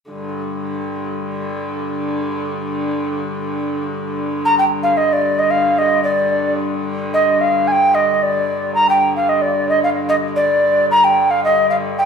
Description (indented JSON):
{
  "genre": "medieval",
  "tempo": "111 BPM",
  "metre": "2/4",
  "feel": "straight",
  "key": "unclear",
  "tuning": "A4 = 440 Hz",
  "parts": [
    { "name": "warm hurdy-gurdy", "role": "drone", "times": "0.1-12.1 s", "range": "G2 to D3", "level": "-22 LUFS", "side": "left 1 dB", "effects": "none" },
    { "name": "breathy mellow tenor recorder", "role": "melody", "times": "4.5-12.1 s", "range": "D5 to Bb5", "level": "-14 LUFS", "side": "right 1 dB", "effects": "none" }
  ],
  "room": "wet large studio reverb, RT60 1.3 s",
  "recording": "band playing live in one room",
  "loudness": "-15 LUFS",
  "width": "side -6 dB against mid",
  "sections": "0.1-4.4 A section; 4.4-12.1 B section",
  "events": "none",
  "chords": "none",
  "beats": "| 0.10 0.64 | 1.18 1.73 | 2.27 2.81 | 3.35 3.89 | 4.43 4.97 | 5.51 6.05 | 6.59 7.12 | 7.67 8.20 | 8.74 9.28 | 9.82 10.36 | 10.90 11.44 | 11.98"
}